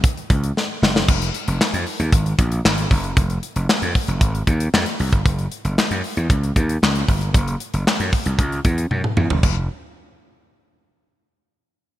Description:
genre	early-eighties boogie funk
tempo	115 BPM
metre	4/4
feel	straight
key	unclear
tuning	A4 = 442 Hz
part	modern studio drum kit	drums	0.0-9.6 s	crash cymbal, handclaps, hi-hat, kick drum, snare drum, toms	-18 LUFS	equal	gated reverb
part	gritty slap bass	bass	0.3-9.7 s	F1 to Gb2	-21 LUFS	equal	overdrive
room	light reverb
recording	bright 1980s-style digital production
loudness	-17 LUFS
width	side -14 dB against mid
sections	0.0-1.1 A section; 1.1-9.4 B section; 9.4-11.5 C section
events	drum fill 0.6-1.1, 8.9-9.4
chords	none

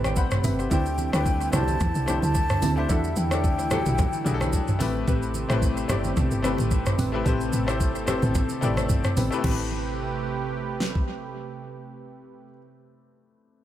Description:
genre	amapiano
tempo	110 BPM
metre	4/4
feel	swing 55% on 16ths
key	A minor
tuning	A4 = 440 Hz
part	bright grand piano	accompaniment	0.0-13.6 s	F#3 to B5	-31 LUFS	left 5 dB	none
part	warm analog pad	sustained chords	0.0-12.5 s	C3 to B4	-32 LUFS	right 4 dB	chorus, sidechain pumping
part	deep mellow chord stab	stabs	0.0-12.5 s	C4 to B4	-33 LUFS	right 1 dB	chorus, analog delay
part	woody log drum bass	bass	0.0-12.5 s	G1 to E2	-27 LUFS	equal	none
part	smooth R&B drum kit	drums	0.0-11.1 s	crash cymbal, hi-hat, kick drum, rim click, shaker, snare drum, toms	-26 LUFS	equal	analog delay
part	congas	percussion	0.0-9.7 s	none	-33 LUFS	right 2 dB	none
part	mellow hollow concert flute	melody	0.7-4.8 s	E5 to A5	-30 LUFS	left 2 dB	analog delay
room	little or no reverb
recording	echo-heavy mix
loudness	-22 LUFS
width	side -12 dB against mid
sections	0.0-9.4 A section; 9.4-13.6 B section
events	drop 0.0-9.4; grand piano fill 0.0-0.7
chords	0.0 Am9; 0.7 D9sus4; 2.9 Em11; 4.8 Am9

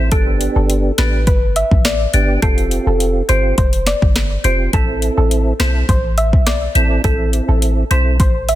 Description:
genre	dancehall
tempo	104 BPM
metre	4/4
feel	straight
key	A minor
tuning	A4 = 439 Hz
part	percussive tonewheel organ	accompaniment	0.0-8.2 s	B3 to A4	-20 LUFS	right 2 dB	chorus vibrato, slow rotary speaker
part	clean 808-style bass	bass	0.0-8.6 s	F1 to B1	-16 LUFS	equal	none
part	soft round pluck	melody	0.1-8.6 s	A4 to E5	-21 LUFS	equal	chorus, digital delay
part	afro-pop drum kit	drums	0.1-8.6 s	hi-hat, kick drum, rim click, snare drum	-16 LUFS	equal	none
room	digital ambience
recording	dense, heavily limited modern master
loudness	-13 LUFS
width	side -14 dB against mid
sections	0.0-8.6 A section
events	none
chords	0.1 G; 2.4 Fsus2; 4.7 Am

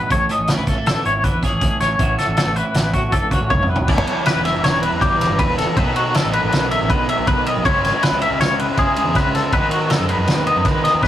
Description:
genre	math rock and midwest emo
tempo	160 BPM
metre	5/4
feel	straight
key	A lydian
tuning	A4 = 440 Hz
part	twelve-string electric guitar	accompaniment	0.0-5.8 s	E2 to F#4	-27 LUFS	right 3 dB	none
part	twangy electric guitar	arpeggios	0.0-11.1 s	F#4 to E5	-19 LUFS	left 2 dB	tremolo
part	fuzz fingered electric bass	bass	0.1-11.1 s	E1 to D#3	-24 LUFS	equal	overdrive
part	loose indie drum kit	drums	0.1-11.1 s	crash cymbal, hi-hat, kick drum, ride cymbal, snare drum, toms	-20 LUFS	equal	none
part	overdriven electric guitar	riff	3.9-11.1 s	B2 to A4	-22 LUFS	right 1 dB	none
room	moderate booth ambience, RT60 0.2 s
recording	rough rehearsal-room recording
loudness	-15 LUFS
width	side -12 dB against mid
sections	0.0-3.9 A section; 3.9-11.1 B section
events	drum fill 3.5-3.9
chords	0.1 Amaj9; 2.0 A69; 3.9 Em; 5.8 B7sus4; 7.6 C#m7; 9.5 G#m7/D#

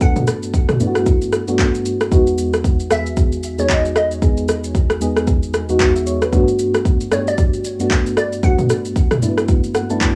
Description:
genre	amapiano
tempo	114 BPM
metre	4/4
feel	swing 58% on 16ths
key	unclear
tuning	A4 = 440 Hz
part	glassy wavetable pluck	melody	0.0-10.2 s	C#5 to F#5	-26 LUFS	equal	chorus, plate reverb, tape echo
part	mellow FM electric piano	accompaniment	0.0-10.2 s	E2 to A5	-21 LUFS	equal	chorus, tremolo, cassette tape
part	deep house drum kit	drums	0.0-10.2 s	handclaps, kick drum, rim click, shaker, toms	-19 LUFS	equal	overdrive, cassette tape
room	light reverb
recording	home recording on cassette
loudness	-17 LUFS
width	mono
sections	0.0-10.2 A section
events	FM electric piano fill 9.5-10.2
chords	0.0 Gmaj9; 2.1 Emaj9; 6.3 Gmaj9

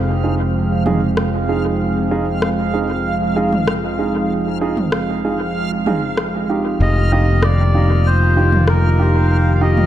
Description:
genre	ambient dub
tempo	96 BPM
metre	4/4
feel	straight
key	unclear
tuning	A4 = 439 Hz
part	warm analog pad	sustained chords	0.0-9.9 s	Eb3 to G5	-21 LUFS	right 1 dB	chorus
part	modern bright fingered electric bass	bass	0.0-9.9 s	F1	-17 LUFS	equal	none
part	backwards swelling texture	texture	0.0-9.9 s	F5	-27 LUFS	right 2 dB	built-in reverb
part	warm upright piano	stabs	0.2-9.7 s	Eb4 to Ab4	-22 LUFS	right 4 dB	dub echo
part	organic electronic drum kit	drums	0.9-9.9 s	rim click, toms	-25 LUFS	equal	overdrive, small room reverb, dub echo
part	melodica	melody	6.8-9.9 s	Bb4 to F5	-22 LUFS	left 1 dB	dub echo
room	moderate lush hall reverb, RT60 1.8 s, digital ambience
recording	none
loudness	-14 LUFS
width	side -12 dB against mid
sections	0.0-9.9 A section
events	none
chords	0.0 Ebadd9/F

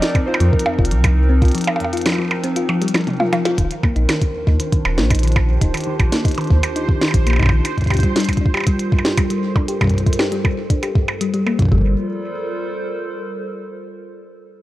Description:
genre	IDM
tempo	118 BPM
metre	4/4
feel	straight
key	G minor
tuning	A4 = 440 Hz
part	warbly lo-fi synth keys	melody	0.0-3.0 s	Bb4 to D5	-28 LUFS	equal	chorus, tape echo
part	warbly tape-like pad	sustained chords	0.0-13.7 s	Eb3 to C5	-26 LUFS	right 1 dB	chorus, built-in reverb, vintage 12-bit sampler grit
part	glitchy drum kit	drums	0.0-11.7 s	hi-hat, percussion blips, snare drum, toms	-22 LUFS	right 1 dB	overdrive, small room ambience, digital delay
part	thumb-piano-like synth pluck	arpeggios	0.1-12.0 s	Eb2 to G4	-22 LUFS	left 2 dB	chorus, ping-pong delay
part	electronic kick drum	drums	0.1-11.8 s	none	-16 LUFS	equal	overdrive, small room ambience
part	warm sub bass	bass	0.4-7.6, 11.7-12.0 s	Eb1 to F2	-16 LUFS	equal	none
part	bubbling stepped-filter texture	texture	4.0-11.7 s	C5	-31 LUFS	right 7 dB	chorus, built-in reverb, sidechain pumping
room	light reverb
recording	worn, warbling old tape, cassette tape, warbly pitch drift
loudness	-15 LUFS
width	side -16 dB against mid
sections	0.0-3.6 A section; 3.6-11.7 B section; 11.7-13.8 C section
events	break 1.5-3.6; drum fill 3.1-3.6; filter sweep on ambient pad 3.6-11.7; filter sweep on synth arpeggio sound 3.6-11.7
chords	0.0 F7sus4; 3.6 Ebmaj9; 7.6 Gm11

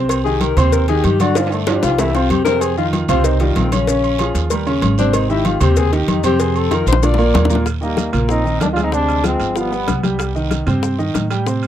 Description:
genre	Afro-Cuban jazz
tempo	190 BPM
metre	4/4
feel	straight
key	Eb major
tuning	A4 = 440 Hz
part	clear grand piano	accompaniment	0.0-11.7 s	Bb2 to B5	-20 LUFS	right 2 dB	none
part	upright bass	bass	0.0-11.7 s	G1 to A2	-19 LUFS	right 1 dB	none
part	agogo bells and timbales	percussion	0.1-11.7 s	none	-26 LUFS	right 8 dB	none
part	congas	percussion	0.1-11.7 s	none	-23 LUFS	left 1 dB	none
part	cowbell and bongos	percussion	0.1-11.6 s	none	-24 LUFS	left 6 dB	none
part	guiro	percussion	0.1-11.7 s	none	-33 LUFS	right 26 dB	none
part	maracas	percussion	0.1-11.7 s	none	-33 LUFS	left 24 dB	none
part	dark tenor saxophone	second line	0.2-10.0 s	G3 to D5	-21 LUFS	left 9 dB	none
part	brilliant trombone	melody	7.8-10.1 s	Bb3 to F4	-21 LUFS	right 1 dB	tape echo
room	little or no reverb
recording	dry, close 1970s-style studio recording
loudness	-14 LUFS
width	side -11 dB against mid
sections	0.0-7.7 A section; 7.7-11.7 B section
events	tenor saxophone solo 0.0-7.7; drum fill 1.4-2.6, 6.7-7.7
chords	0.1 Cm; 1.4 G5; 2.0 C; 2.6 F5; 3.9 Bbm7; 4.5 Eb7; 5.1 Abmaj7; 6.4 F5; 7.0 Bb; 7.7 Eb6; 8.9 Dm7b5; 9.6 G7; 10.2 Cm

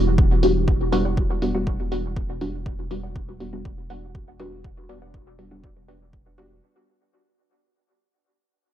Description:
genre	dub techno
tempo	121 BPM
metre	4/4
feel	straight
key	E minor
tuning	A4 = 440 Hz
part	warbly tape-like pad	sustained chords	0.0-6.6 s	E3 to G4	-30 LUFS	right 2 dB	chorus, built-in reverb, sidechain pumping
part	filtered dub chord stab	stabs	0.0-6.6 s	G3 to F#4	-25 LUFS	equal	chorus, phaser, sidechain pumping, dub echo
part	soft dub sub bass	bass	0.0-6.6 s	E1	-27 LUFS	equal	sidechain pumping
part	electronic kick drum	drums	0.2-6.2 s	none	-23 LUFS	equal	overdrive
part	electronic hi-hat	drums	0.4-6.5 s	none	-39 LUFS	equal	overdrive, low-pass filter on hats
part	filtered dub chord stab	riff	1.1-5.2 s	G4 to F#5	-42 LUFS	left 2 dB	none
room	light reverb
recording	dry, gritty hardware recording, transformer saturation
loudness	-20 LUFS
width	side -11 dB against mid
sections	0.0-6.6 A section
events	fade-out 0.0-6.6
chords	0.0 Em7

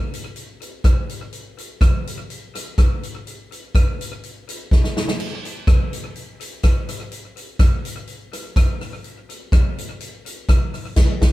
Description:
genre	ska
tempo	124 BPM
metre	4/4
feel	straight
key	none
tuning	none
part	swinging big-band drum kit	drums	0.1-11.3 s	crash cymbal, hi-hat, kick drum, rim click, snare drum	-18 LUFS	equal	none
room	moderate small room reverb, RT60 0.5 s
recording	band playing live in one room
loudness	-17 LUFS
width	side -17 dB against mid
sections	0.0-11.3 A section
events	drum fill 4.7-5.2; band accent 11.0-11.3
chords	none

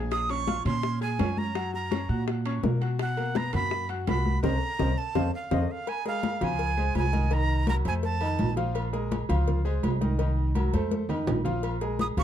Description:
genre	latin, salsa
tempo	167 BPM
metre	4/4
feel	straight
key	Bb minor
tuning	A4 = 440 Hz
part	bright concert grand piano	accompaniment	0.0-12.2 s	Eb3 to Ab6	-33 LUFS	left 2 dB	none
part	upright bass	bass	0.0-12.2 s	Bb1 to Cb3	-28 LUFS	equal	none
part	breathy bright jazz flute	melody	0.1-8.5, 12.0-12.2 s	Eb5 to Eb6	-31 LUFS	right 4 dB	none
part	bongos and cowbell	percussion	0.1-12.2 s	none	-35 LUFS	left 11 dB	none
part	congas	percussion	0.1-12.2 s	none	-32 LUFS	left 1 dB	none
part	timbales and agogo bells	percussion	0.1-12.2 s	none	-36 LUFS	right 4 dB	none
room	light reverb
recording	dark, warm production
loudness	-25 LUFS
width	side -10 dB against mid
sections	0.0-5.9 A section; 5.9-12.2 B section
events	band accent 4.4-5.9; drum fill 4.8-5.9, 10.6-11.6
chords	0.1 Bbm9; 1.6 Gb; 3.0 B5; 4.4 Cm7; 5.2 F5; 5.9 Bbm7; 6.6 Dbmaj7; 7.3 Cm7b5; 8.0 F7; 8.8 Bbm7; 9.5 Dbmaj7; 10.2 Cm7b5; 10.9 F7; 11.6 Bb7(no3)

